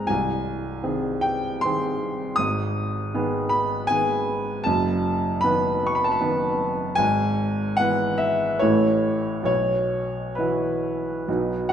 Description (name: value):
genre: classical, romantic nocturne for solo piano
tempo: 66-82 BPM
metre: 3/4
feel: rubato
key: unclear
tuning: A4 = 438 Hz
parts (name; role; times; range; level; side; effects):
- warm baby grand piano; solo; 0.0-11.7 s; C1 to D#6; -21 LUFS; equal; none
room: wet recital hall reverb, RT60 1.7 s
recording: nothing above 10.7 kHz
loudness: -21 LUFS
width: side -9 dB against mid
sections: 0.0-11.7 A section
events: none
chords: 0.1 Ab/C; 2.4 G#m; 4.7 B7/F#; 7.0 E/G#; 8.6 A; 9.5 Bsus4